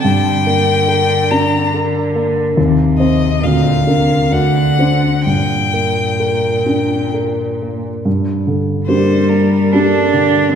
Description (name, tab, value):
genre	classical, slow romantic movement for piano trio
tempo	63-75 BPM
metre	3/4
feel	rubato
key	G minor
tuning	A4 = 439 Hz
part	rich violin	melody	0.0-10.6 s	G4 to Bb5	-19 LUFS	left 5 dB	none
part	clear cello	second line	0.0-10.6 s	Bb2 to D4	-18 LUFS	right 2 dB	none
part	dark grand piano	accompaniment	0.0-10.6 s	D2 to C5	-14 LUFS	equal	none
room	wet scoring stage reverb, RT60 1.9 s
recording	heard from further back in the room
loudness	-12 LUFS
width	side -8 dB against mid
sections	0.0-8.1 A section; 8.1-10.6 B section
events	none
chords	0.0 Gm; 2.6 Cm/Eb; 3.4 Bbadd9/D; 4.3 D7; 5.3 Gm